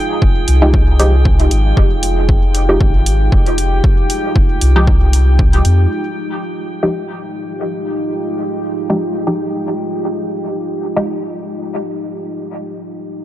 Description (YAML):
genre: dub techno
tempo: 116 BPM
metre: 4/4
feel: swing 55% on 16ths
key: F minor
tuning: A4 = 440 Hz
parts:
  - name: deep dark ambient pad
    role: sustained chords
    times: 0.0-13.1 s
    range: Ab3 to Ab4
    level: -21 LUFS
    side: equal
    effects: chorus, built-in reverb, sidechain pumping
  - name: drifting glass-harmonics texture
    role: texture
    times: 0.0-5.9 s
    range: G5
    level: -28 LUFS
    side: equal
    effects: chorus, built-in reverb, sidechain pumping
  - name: soft dub sub bass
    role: bass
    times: 0.2-5.9 s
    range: F1 to F2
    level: -13 LUFS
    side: equal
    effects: transformer saturation, sidechain pumping
  - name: electronic kick drum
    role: drums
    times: 0.2-5.5 s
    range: none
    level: -13 LUFS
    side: equal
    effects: none
  - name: electronic hi-hat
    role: drums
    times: 0.5-5.8 s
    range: none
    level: -22 LUFS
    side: equal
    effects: overdrive, low-pass filter on hats
  - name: filtered dub chord stab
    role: stabs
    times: 0.6-11.2 s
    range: F3 to G4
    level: -21 LUFS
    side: equal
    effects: chorus, phaser, sidechain pumping, dub echo
room: little or no reverb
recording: dry, gritty hardware recording, transformer saturation, cassette tape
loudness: -12 LUFS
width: side -13 dB against mid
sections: 0.0-5.9 A section; 5.9-13.2 B section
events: none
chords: 0.0 Fm9